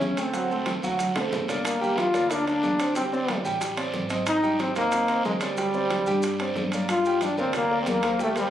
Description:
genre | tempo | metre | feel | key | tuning
latin, salsa | 183 BPM | 4/4 | straight | G minor | A4 = 440 Hz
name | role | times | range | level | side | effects
bright trombone | melody | 0.0-8.5 s | G3 to F4 | -24 LUFS | left 1 dB | none
clear grand piano | accompaniment | 0.0-8.5 s | F#3 to G5 | -28 LUFS | right 2 dB | none
upright bass | bass | 0.0-8.5 s | G1 to G2 | -36 LUFS | left 1 dB | none
bongos | percussion | 0.0-8.5 s | none | -40 LUFS | left 4 dB | none
congas | percussion | 0.0-8.5 s | none | -35 LUFS | equal | none
guiro | percussion | 0.0-8.5 s | none | -37 LUFS | right 1 dB | none
maracas | percussion | 0.0-8.5 s | none | -42 LUFS | right 1 dB | none
timbales | percussion | 0.0-8.5 s | none | -34 LUFS | right 4 dB | none
room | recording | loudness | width
light reverb | recorded on a phone in the room, club reverb | -22 LUFS | side -11 dB against mid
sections
0.0-6.9 A section; 6.9-8.5 A section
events
drum fill 1.0-1.6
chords
0.3 D7; 1.6 Gm7; 3.0 D7sus4; 4.3 Abmaj7; 5.6 D7sus4; 6.9 Gm7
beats
0.01 | 0.34 0.67 0.99 1.32 | 1.65 1.97 2.30 2.63 | 2.95 3.28 3.61 3.94 | 4.26 4.59 4.92 5.25 | 5.57 5.90 6.23 6.56 | 6.88 7.21 7.54 7.87 | 8.19

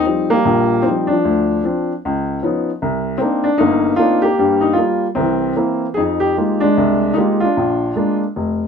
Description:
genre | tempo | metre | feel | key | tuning
solo jazz | 152 BPM | 4/4 | swing 65% on 8ths, rubato | unclear | A4 = 440 Hz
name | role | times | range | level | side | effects
warm upright piano | solo | 0.0-8.7 s | F1 to Ab4 | -14 LUFS | left 1 dB | none
room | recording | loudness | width
moderate club ambience, RT60 0.5 s | none | -14 LUFS | side -6 dB against mid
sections
0.0-8.7 A section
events
none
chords
0.0 Eb69; 1.3 Dm7; 2.0 Db9; 2.8 Cm9; 4.4 Gm7; 5.2 C7; 6.0 Fm11; 7.6 Bb7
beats
0.07 0.47 0.87 | 1.26 1.65 2.04 2.42 | 2.81 3.21 3.60 3.99 | 4.38 4.78 5.17 5.58 | 5.98 6.38 6.78 7.18 | 7.57 7.96 8.35

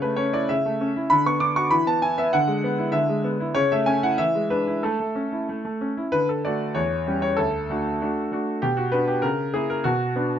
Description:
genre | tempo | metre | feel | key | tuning
classical-period piano sonatina | 97 BPM | 2/4 | straight | A major, D major from 6.1 s | A4 = 440 Hz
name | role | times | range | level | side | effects
bright concert grand piano | solo | 0.0-10.4 s | D2 to D6 | -21 LUFS | equal | none
room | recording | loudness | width
light reverb | nothing above 7.6 kHz | -21 LUFS | side -9 dB against mid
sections
0.0-6.1 A section; 6.1-10.4 B section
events
none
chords
0.0 A/C#; 1.1 Bm/D; 1.7 E5; 2.3 E7/D; 3.6 A/C#; 4.2 E7; 4.8 A; 6.1 D; 6.8 C#dim/E; 7.4 D; 8.6 Bm; 9.2 A#dim/C#; 9.9 Bm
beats
0.48 | 1.10 1.72 | 2.33 2.95 | 3.57 4.20 | 4.84 5.49 | 6.13 6.76 | 7.38 8.00 | 8.62 9.24 | 9.85

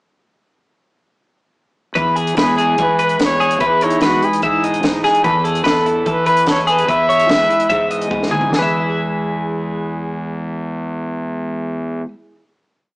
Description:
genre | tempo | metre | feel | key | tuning
math rock and midwest emo | 147 BPM | 4/4 | straight | E major | A4 = 440 Hz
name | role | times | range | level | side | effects
twelve-string electric guitar | accompaniment | 2.0-12.4 s | B2 to A4 | -23 LUFS | right 1 dB | phaser
twelve-string electric guitar | arpeggios | 2.0-12.1 s | G#4 to E5 | -17 LUFS | left 1 dB | none
fuzz fingered electric bass | bass | 2.0-12.0 s | E2 to E3 | -23 LUFS | equal | overdrive
compact cocktail drum kit | drums | 2.0-8.6 s | hi-hat, kick drum, snare drum, toms | -21 LUFS | equal | none
warm trumpet | melody | 2.4-8.1 s | E4 to E5 | -17 LUFS | equal | none
room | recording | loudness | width
moderate studio reverb, RT60 0.6 s | rough rehearsal-room recording, warm saturation, small speaker sound | -14 LUFS | side -24 dB against mid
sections
2.0-8.5 A section; 8.5-11.8 final chord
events
drum fill 8.1-8.5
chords
2.0 Emaj7; 5.2 B7sus4/E; 6.9 Emaj7; 8.5 E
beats
| 1.97 2.38 2.79 3.20 | 3.61 4.02 4.43 4.84 | 5.25 5.66 6.07 6.47 | 6.88 7.29 7.70 8.11 | 8.51 8.92 9.33 9.74 | 10.15 10.56 10.97 11.38

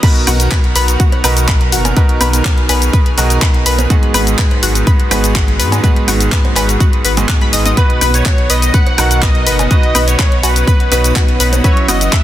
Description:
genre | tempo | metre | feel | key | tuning
progressive house | 124 BPM | 4/4 | straight | B major | A4 = 440 Hz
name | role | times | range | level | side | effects
lush unison pad | sustained chords | 0.0-12.2 s | D#3 to A#4 | -24 LUFS | left 2 dB | chorus, sidechain pumping
analog pluck | arpeggios | 0.0-12.2 s | F#4 to B5 | -20 LUFS | left 2 dB | chorus, cassette tape, sidechain pumping, tape echo
bright baby grand piano | stabs | 0.0-12.2 s | G#2 to B4 | -18 LUFS | right 4 dB | sidechain pumping, tape echo
electronic kick drum | drums | 0.0-12.2 s | none | -12 LUFS | equal | none
pop drum kit | drums | 0.0-12.2 s | cabasa, crash cymbal, handclaps, hi-hat, woodblock | -17 LUFS | left 1 dB | soft clipping on snare
saturated sub bass | bass | 0.3-12.1 s | F#1 to G#2 | -15 LUFS | equal | sidechain pumping
congas, bongos and cowbell | percussion | 0.3-12.0 s | none | -24 LUFS | right 2 dB | sidechain pumping on perc
wide unison lead | melody | 7.8-12.2 s | B4 to F#5 | -19 LUFS | equal | analog chorus, cassette tape, tape echo
soft synth bell | second line | 7.8-12.2 s | B5 to F#6 | -26 LUFS | equal | none
room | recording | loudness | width
little or no reverb | dense, heavily limited modern master, high-pass filter | -10 LUFS | side -13 dB against mid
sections
0.0-12.2 A section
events
drop 0.0-12.2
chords
0.0 Bmaj7; 3.9 G#m7; 7.8 Bmaj7; 11.6 F#7sus4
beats
| 0.03 0.52 1.00 1.48 | 1.97 2.45 2.93 3.42 | 3.90 4.39 4.87 5.35 | 5.84 6.32 6.80 7.29 | 7.77 8.26 8.74 9.22 | 9.71 10.19 10.68 11.16 | 11.64 12.13

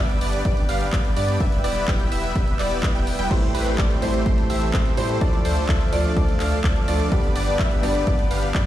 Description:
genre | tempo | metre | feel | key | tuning
EDM, festival progressive house | 126 BPM | 4/4 | straight | A minor | A4 = 440 Hz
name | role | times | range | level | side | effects
lush unison pad | sustained chords | 0.0-8.7 s | A4 to E6 | -33 LUFS | equal | chorus, sidechain pumping
wide unison pluck | arpeggios | 0.0-8.7 s | B4 to G5 | -30 LUFS | equal | auto-pan, sidechain pumping, dub echo
supersaw chords | riff | 0.0-8.7 s | E3 to G5 | -26 LUFS | equal | sidechain pumping, dub echo
saturated sub bass | bass | 0.0-8.7 s | E1 to A2 | -26 LUFS | equal | sidechain pumping
house drum kit | drums | 0.1-8.6 s | crash cymbal, handclaps, hi-hat | -32 LUFS | left 1 dB | none
electronic kick drum | drums | 0.5-8.6 s | none | -22 LUFS | equal | none
clear baby grand piano | accompaniment | 3.3-8.7 s | G2 to G4 | -27 LUFS | right 2 dB | sidechain pumping, dub echo
room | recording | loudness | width
digital ambience | played on a big sound system in a bare room, large studio reverb | -19 LUFS | side -13 dB against mid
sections
0.0-8.7 A section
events
none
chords
0.0 G; 1.4 Em; 3.3 Am7; 5.2 Dm; 7.1 G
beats
0.45 0.93 | 1.40 1.88 2.36 2.83 | 3.31 3.79 4.26 4.74 | 5.21 5.69 6.17 6.64 | 7.12 7.59 8.07 8.55

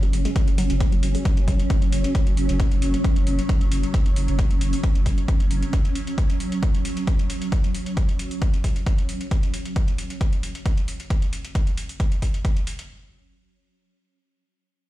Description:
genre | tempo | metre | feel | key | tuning
driving peak-time techno | 134 BPM | 4/4 | straight | unclear | A4 = 439 Hz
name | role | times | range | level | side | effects
warbly dusty pluck | riff | 0.0-2.1 s | F#3 to G#3 | -33 LUFS | equal | chorus, overdrive, sidechain pumping, ping-pong delay
saturated sub bass | bass | 0.0-5.6 s | F#1 | -24 LUFS | equal | overdrive, sidechain pumping, low-pass filter
swarming drone | drone | 0.0-9.4 s | F#3 to C#4 | -28 LUFS | right 1 dB | built-in reverb, sidechain pumping
electronic hi-hat | drums | 0.0-12.9 s | none | -36 LUFS | left 1 dB | none
electronic kick drum | drums | 0.4-12.5 s | none | -21 LUFS | equal | none
room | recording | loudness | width
digital ambience | played on a big sound system in a bare room, stone room reverb | -20 LUFS | side -15 dB against mid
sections
0.0-12.9 A section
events
filter sweep on synth arpeggio sound 0.0-2.1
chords
0.0 F#5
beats
| 0.36 0.81 1.25 1.70 | 2.15 2.60 3.04 3.49 | 3.94 4.39 4.83 5.28 | 5.73 6.18 6.63 7.07 | 7.52 7.97 8.42 8.87 | 9.31 9.76 10.21 10.66 | 11.10 11.55 12.00 12.45

